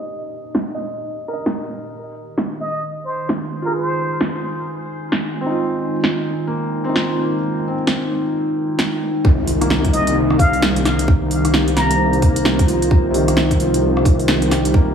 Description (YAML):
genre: future garage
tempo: 131 BPM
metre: 4/4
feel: swing 61% on 16ths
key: C minor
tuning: A4 = 439 Hz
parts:
  - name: felt-muted upright piano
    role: accompaniment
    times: 0.0-14.9 s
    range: C3 to Eb5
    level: -24 LUFS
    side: right 2 dB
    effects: sidechain pumping, low-pass filter, dub echo
  - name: warbly tape-like pad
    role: sustained chords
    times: 0.0-14.9 s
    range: Bb2 to Ab5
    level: -22 LUFS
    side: left 1 dB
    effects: chorus, built-in reverb, sidechain pumping
  - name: garage drum kit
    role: drums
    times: 0.5-14.7 s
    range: hi-hat, rim click, snare drum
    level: -21 LUFS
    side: right 1 dB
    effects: none
  - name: trumpet with plunger mute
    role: melody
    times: 2.6-4.2, 9.9-12.2 s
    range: Bb4 to Bb5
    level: -24 LUFS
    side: left 1 dB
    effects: dub echo
  - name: swelling detuned saw bass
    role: bass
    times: 9.2-14.9 s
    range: C2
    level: -20 LUFS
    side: equal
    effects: tube saturation, sidechain pumping
  - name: electronic kick drum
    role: drums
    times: 9.2-14.9 s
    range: none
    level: -14 LUFS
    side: equal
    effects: none
  - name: impact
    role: sound effects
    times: 9.2-11.1 s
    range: none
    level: -26 LUFS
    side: equal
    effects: none
room: light reverb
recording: low-pass filter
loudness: -16 LUFS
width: side -7 dB against mid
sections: 0.0-9.2 A section; 9.2-14.9 B section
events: filter sweep on ambient pad 0.0-9.2; filter sweep on felt piano 0.0-9.2; filter sweep 0.0-9.2; impact 9.2-11.1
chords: 0.0 Cm7; 1.9 Ab69/Eb; 9.2 Cm7